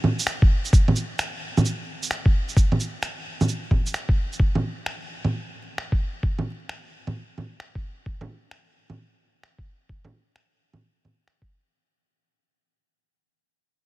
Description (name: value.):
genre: future garage.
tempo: 131 BPM.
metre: 4/4.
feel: swing 66% on 16ths.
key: none.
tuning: none.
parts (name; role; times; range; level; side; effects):
electronic bongos, shaker and finger snaps; drums; 0.0-11.4 s; none; -26 LUFS; right 1 dB; soft clipping on snare.
electronic kick drum; drums; 0.4-11.5 s; none; -19 LUFS; equal; none.
room: digital ambience.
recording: dense, heavily limited modern master, vinyl crackle.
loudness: -22 LUFS.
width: side -19 dB against mid.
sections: 0.0-11.7 A section.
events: fade-out 0.0-11.7.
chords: none.